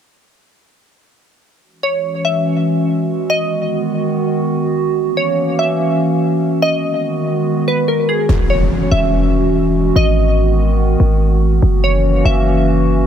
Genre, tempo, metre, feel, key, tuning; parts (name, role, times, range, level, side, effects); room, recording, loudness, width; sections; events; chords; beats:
hip hop; 144 BPM; 4/4; half-time; A4 = 441 Hz
warbly tape-like pad; sustained chords; 1.6-13.1 s; D#3 to F#4; -16 LUFS; right 1 dB; chorus, built-in reverb
glassy wavetable pluck; melody; 1.8-12.8 s; G#4 to E5; -19 LUFS; equal; chorus, dub echo
warm 808-style bass; bass; 8.3-13.1 s; E1 to G#1; -14 LUFS; equal
impact; sound effects; 8.3-10.0 s; -24 LUFS; equal
light reverb, digital ambience; echo-heavy mix; -13 LUFS; side -9 dB against mid
1.6-8.3 A section; 8.3-13.1 B section
impact 8.3-10.0
1.6 E69; 3.3 G#m7; 5.0 F#7; 6.6 B6; 8.3 E69; 10.0 G#m7; 11.6 F#7
| 1.62 2.04 2.46 2.88 | 3.29 3.71 4.12 4.54 | 4.96 5.38 5.79 6.21 | 6.62 7.04 7.46 7.88 | 8.29 8.71 9.12 9.54 | 9.96 10.38 10.79 11.21 | 11.62 12.04 12.46 12.88